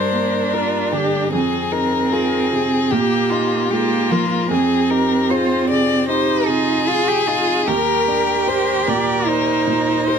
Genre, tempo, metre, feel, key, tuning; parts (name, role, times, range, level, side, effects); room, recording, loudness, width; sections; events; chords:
neoclassical piano and strings; 75 BPM; 4/4; rubato; F dorian; A4 = 444 Hz
rich violin; melody; 0.0-10.2 s; F4 to D5; -21 LUFS; left 7 dB
rich cello; second line; 0.0-10.2 s; Bb3 to G4; -20 LUFS; right 4 dB
felt-muted upright piano; accompaniment; 0.0-10.2 s; Eb2 to D5; -22 LUFS; right 1 dB
warm viola; accompaniment; 0.0-10.2 s; F4 to D5; -25 LUFS; right 2 dB
light reverb; close, detailed microphones; -15 LUFS; side -7 dB against mid
0.0-10.2 A section
0.0 Gm; 1.3 Fm7; 2.9 Bb7sus4; 4.5 Fm7; 7.7 Ebmaj7